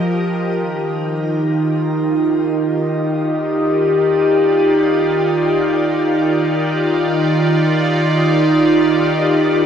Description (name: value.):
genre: ambient.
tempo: free time.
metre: none.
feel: none.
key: Eb major.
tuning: A4 = 441 Hz.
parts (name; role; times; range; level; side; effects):
evolving wavetable pad; solo; 0.0-9.7 s; Eb3 to Eb5; -14 LUFS; equal; chorus, built-in reverb.
room: wet shimmer reverb, RT60 7.8 s.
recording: none.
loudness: -14 LUFS.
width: side -8 dB against mid.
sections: 0.6-9.7 A section.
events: none.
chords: 0.0 F7sus4; 0.6 Ebmaj7.